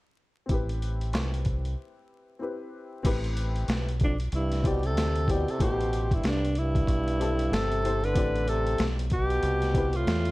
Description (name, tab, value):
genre	hip hop, jazz-hop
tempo	94 BPM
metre	4/4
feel	swing 60% on 16ths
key	A minor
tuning	A4 = 440 Hz
part	warm upright piano	accompaniment	0.5-10.2 s	A3 to D5	-35 LUFS	left 3 dB	none
part	deep dub fingered electric bass	bass	0.5-10.3 s	G1 to E2	-29 LUFS	equal	none
part	boom bap sampler-style drum kit	drums	0.5-10.3 s	crash cymbal, hi-hat, kick drum, snare drum	-30 LUFS	equal	none
part	breathy alto saxophone	melody	4.0-10.3 s	D4 to B4	-29 LUFS	equal	none
part	clear trombone	second line	4.0-10.3 s	F2 to D3	-33 LUFS	right 2 dB	none
room	studio reverb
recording	dark, warm production, vinyl crackle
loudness	-25 LUFS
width	side -20 dB against mid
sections	0.5-3.0 A section; 3.0-10.3 B section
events	break 1.8-3.0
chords	0.5 Am9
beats	| 0.49 1.13 1.77 2.41 | 3.04 3.68 4.32 4.96 | 5.60 6.24 6.88 7.51 | 8.15 8.79 9.43 10.07